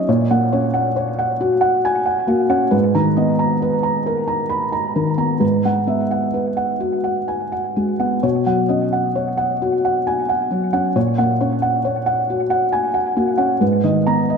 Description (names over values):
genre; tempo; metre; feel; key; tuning
neoclassical minimalist piano; 45 BPM (dotted quarters); 6/8; rubato; unclear; A4 = 440 Hz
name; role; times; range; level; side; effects
felt-muted upright piano; solo; 0.0-14.4 s; G#2 to B5; -16 LUFS; equal; tape echo
room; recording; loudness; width
moderate scoring stage reverb, RT60 1.4 s; none; -16 LUFS; side -6 dB against mid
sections
0.0-14.4 A section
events
none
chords
0.1 F#/A#; 2.7 G#madd9; 5.4 Eadd9/G#; 8.2 Badd9; 11.0 F#/A#; 13.6 G#madd9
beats
| 0.07 1.40 | 2.74 4.07 | 5.42 6.82 | 8.24 9.61 | 10.96 12.30 | 13.61